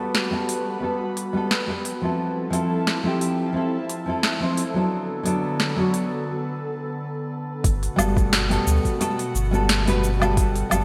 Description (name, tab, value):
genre	sunset chillout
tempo	88 BPM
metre	4/4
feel	swing 54% on 16ths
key	G major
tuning	A4 = 440 Hz
part	nylon-string guitar	accompaniment	0.0-10.8 s	F3 to C5	-26 LUFS	equal	low-pass filter, digital delay
part	airy breathy pad	sustained chords	0.0-10.8 s	B2 to B4	-31 LUFS	equal	chorus
part	smooth R&B drum kit	drums	0.1-10.8 s	cabasa, hi-hat, snare drum, woodblock	-27 LUFS	equal	overdrive, studio ambience, gated reverb
part	warm sub bass	bass	7.6-10.8 s	G1 to D2	-25 LUFS	equal	tube saturation
part	electronic kick drum	drums	7.6-10.5 s	none	-24 LUFS	equal	overdrive, studio ambience
room	wet lush hall reverb, RT60 1.9 s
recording	bright 1980s-style digital production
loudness	-23 LUFS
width	mono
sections	0.0-7.6 A section; 7.6-10.8 B section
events	break 6.3-7.6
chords	0.0 Gmaj9; 2.2 Fmaj7; 4.9 Bm7; 7.6 Gmaj9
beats	0.15 0.83 1.51 | 2.19 2.87 3.56 4.24 | 4.92 5.60 6.28 6.96 | 7.65 8.33 9.01 9.69 | 10.37